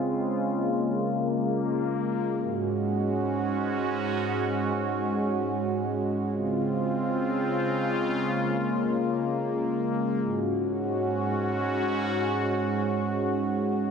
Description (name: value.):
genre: hip hop.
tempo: free time.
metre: none.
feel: none.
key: unclear.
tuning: A4 = 438 Hz.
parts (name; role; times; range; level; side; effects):
sweeping resonant pad; solo; 0.0-13.9 s; Ab2 to Gb4; -25 LUFS; equal; chorus, tape echo.
room: moderate lush hall reverb, RT60 2.3 s.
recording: low-pass filter.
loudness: -25 LUFS.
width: side -6 dB against mid.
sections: 0.0-2.4 A section; 2.4-13.9 B section.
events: filter sweep 0.0-2.4.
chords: 0.0 Dbmaj7; 2.4 Ab7sus4; 6.3 Dbmaj7; 10.2 Ab7sus4.